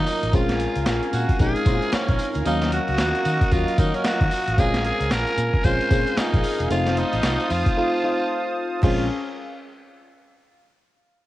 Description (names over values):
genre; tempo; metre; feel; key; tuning
R&B, new jack swing; 113 BPM; 4/4; swing 61% on 16ths; Bb minor; A4 = 440 Hz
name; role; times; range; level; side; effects
raspy tenor saxophone; melody; 0.0-9.1 s; Db4 to C5; -26 LUFS; equal; cassette tape
FM electric piano; accompaniment; 0.0-9.1 s; Gb3 to F5; -26 LUFS; left 1 dB; chorus, phaser, cassette tape
warm analog pad; sustained chords; 0.0-9.1 s; Db4 to Eb6; -29 LUFS; right 2 dB; chorus, cassette tape
vintage muted fingered electric bass; bass; 0.0-9.1 s; E1 to Eb3; -26 LUFS; equal; none
boom bap sampler-style drum kit; drums; 0.1-9.0 s; crash cymbal, hi-hat, kick drum, snare drum, tambourine; -23 LUFS; equal; none
group handclap; percussion; 0.9-9.1 s; none; -45 LUFS; right 2 dB; none
room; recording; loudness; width
digital ambience; home recording on cassette; -19 LUFS; side -16 dB against mid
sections
0.0-8.8 A section; 8.8-11.0 B section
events
break 7.8-8.8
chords
0.3 Bbm7; 2.5 Ebm7; 4.6 Bbm7; 6.7 F7; 8.8 Bbm7